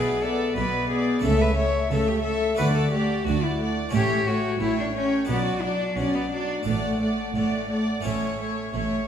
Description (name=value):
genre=classical, baroque-style concerto movement with solo episodes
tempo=89 BPM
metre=4/4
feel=straight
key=D major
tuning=A4 = 440 Hz
part: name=rich cello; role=melody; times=0.0-8.7 s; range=A3 to C#5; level=-27 LUFS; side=left 3 dB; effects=none
part: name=warm chamber violin section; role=melody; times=0.0-9.1 s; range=E5 to G5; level=-39 LUFS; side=left 1 dB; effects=none
part: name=warm chamber violin section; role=second line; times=0.0-9.1 s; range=C#5 to E5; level=-31 LUFS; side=left 1 dB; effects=none
part: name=dark chamber viola section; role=accompaniment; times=0.0-9.1 s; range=F#3 to B3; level=-28 LUFS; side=right 1 dB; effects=none
part: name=harpsichord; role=accompaniment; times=0.0-9.1 s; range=A2 to F#4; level=-34 LUFS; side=equal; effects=none
part: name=dark chamber cello section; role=bass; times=0.0-9.1 s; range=A2 to D3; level=-30 LUFS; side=right 3 dB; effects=none
part: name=rich chamber double bass section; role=bass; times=0.0-9.1 s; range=A1 to D2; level=-30 LUFS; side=right 2 dB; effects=none
room=wet recital hall reverb, RT60 1.4 s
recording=recorded in a church or concert hall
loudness=-22 LUFS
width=side -9 dB against mid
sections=0.0-9.1 A section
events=none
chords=0.0 E5/B; 1.2 A/C#; 2.6 D; 3.9 A7; 5.3 Bm; 6.7 D/A; 8.0 A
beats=0.57 | 1.24 1.91 2.59 3.26 | 3.93 4.61 5.28 5.97 | 6.66 7.35 8.05 8.74